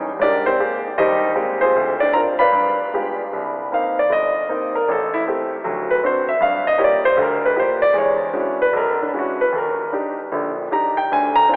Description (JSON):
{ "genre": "solo jazz", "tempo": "155 BPM", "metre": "4/4", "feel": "swing 64% on 8ths, rubato", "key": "C minor", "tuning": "A4 = 439 Hz", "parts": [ { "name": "warm baby grand piano", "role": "solo", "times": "0.0-11.6 s", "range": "G1 to B5", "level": "-19 LUFS", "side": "equal", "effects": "none" } ], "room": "wet cathedral reverb, RT60 5.4 s", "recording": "recorded in a church or concert hall, telephone sound", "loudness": "-19 LUFS", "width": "mono", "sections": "0.0-3.3 A section; 3.3-11.6 B section", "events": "grand piano solo 3.3-11.6", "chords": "0.2 Abmaj9; 1.7 Dm7b5; 2.5 G7b9; 3.3 Cm7; 4.9 Am7; 5.7 D7; 6.4 Gm7; 7.9 E13; 9.5 Ebmaj7" }